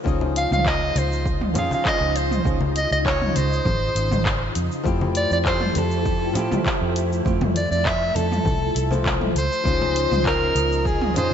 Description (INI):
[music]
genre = sunset chillout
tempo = 100 BPM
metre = 4/4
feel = straight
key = unclear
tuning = A4 = 440 Hz
[part]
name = flamenco guitar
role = accompaniment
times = 0.0-11.3 s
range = F3 to C5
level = -27 LUFS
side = moving between left 8 dB and right 5 dB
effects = auto-pan, digital delay, slapback echo
[part]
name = soft string machine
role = sustained chords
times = 0.0-11.3 s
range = Db3 to Eb5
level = -29 LUFS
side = equal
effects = phaser, ensemble chorus
[part]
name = vintage muted fingered electric bass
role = bass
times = 0.1-11.3 s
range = Ab1 to A2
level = -25 LUFS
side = equal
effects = none
[part]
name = deep house drum kit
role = drums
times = 0.1-11.3 s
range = handclaps, hi-hat, shaker, toms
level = -27 LUFS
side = equal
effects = slapback echo
[part]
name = electronic kick drum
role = drums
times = 0.1-11.0 s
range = none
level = -26 LUFS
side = equal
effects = none
[part]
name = congas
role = percussion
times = 0.2-11.3 s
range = none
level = -29 LUFS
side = left 2 dB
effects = none
[part]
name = breathy soprano saxophone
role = melody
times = 0.4-11.3 s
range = Ab4 to F5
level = -24 LUFS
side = equal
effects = digital delay, slapback echo
[sound]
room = moderate lush hall reverb, RT60 1.9 s, digital ambience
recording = big arena sound, nothing above 7.9 kHz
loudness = -19 LUFS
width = side -8 dB against mid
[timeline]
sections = 0.0-11.3 A section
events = none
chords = 0.0 Dbmaj9; 4.9 Fmaj9; 9.4 Dbmaj9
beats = | 0.06 0.66 1.26 1.86 | 2.46 3.06 3.66 4.26 | 4.86 5.46 6.06 6.66 | 7.26 7.86 8.46 9.06 | 9.66 10.26 10.86